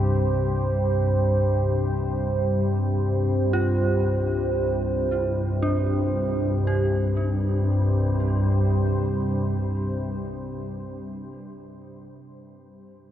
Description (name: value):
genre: dark ambient drone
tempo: free time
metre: none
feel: none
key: unclear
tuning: A4 = 440 Hz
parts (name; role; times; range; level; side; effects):
- deep dark ambient pad; sustained chords; 0.0-10.4 s; C4 to C5; -28 LUFS; right 2 dB; chorus, built-in reverb
- dark detuned synth bell; arpeggios; 0.0-13.1 s; C4 to G4; -32 LUFS; right 1 dB; chorus, tremolo, tape echo
- organ-like drone; drone; 0.0-10.1 s; C2 to G2; -24 LUFS; equal; ensemble chorus, built-in reverb
room: wet huge ambient reverb, RT60 8.8 s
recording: none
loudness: -21 LUFS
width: side -11 dB against mid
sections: 0.0-6.7 A section; 6.7-10.8 B section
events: none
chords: 0.0 C5